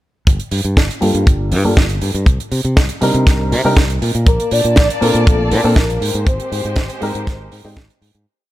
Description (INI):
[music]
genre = nu-disco, nu disco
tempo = 120 BPM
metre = 4/4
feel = straight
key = G minor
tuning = A4 = 439 Hz
[part]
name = fingered electric bass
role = bass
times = 0.3-8.2 s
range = G1 to C3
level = -18 LUFS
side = equal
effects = none
[part]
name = kick drum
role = drums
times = 0.3-7.9 s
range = none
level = -12 LUFS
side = equal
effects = studio reverb
[part]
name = tight funk drum kit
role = drums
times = 0.3-8.2 s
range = hi-hat, snare drum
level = -22 LUFS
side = right 2 dB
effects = studio reverb
[part]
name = dark grand piano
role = accompaniment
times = 1.0-7.8 s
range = G3 to C5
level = -18 LUFS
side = equal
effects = sidechain pumping, low-pass filter, tape echo
[part]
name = soft octave-layered synth lead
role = melody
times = 4.3-7.0 s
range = A4 to D5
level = -19 LUFS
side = left 1 dB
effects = chorus, tremolo, tape echo
[part]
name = warm studio violin section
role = sustained chords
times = 4.3-8.2 s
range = Ab3 to A5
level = -26 LUFS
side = left 1 dB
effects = sidechain pumping
[sound]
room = little or no reverb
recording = none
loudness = -12 LUFS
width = side -15 dB against mid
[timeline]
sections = 0.3-8.3 groove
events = filter sweep on grand piano 0.3-8.3; fade-out 5.6-8.3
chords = 0.3 Gm7; 2.3 Cm7; 4.0 Bbmaj7; 6.0 Abmaj7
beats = | 0.27 0.77 1.27 1.77 | 2.27 2.77 3.27 3.77 | 4.27 4.77 5.27 5.77 | 6.27 6.77 7.27 7.77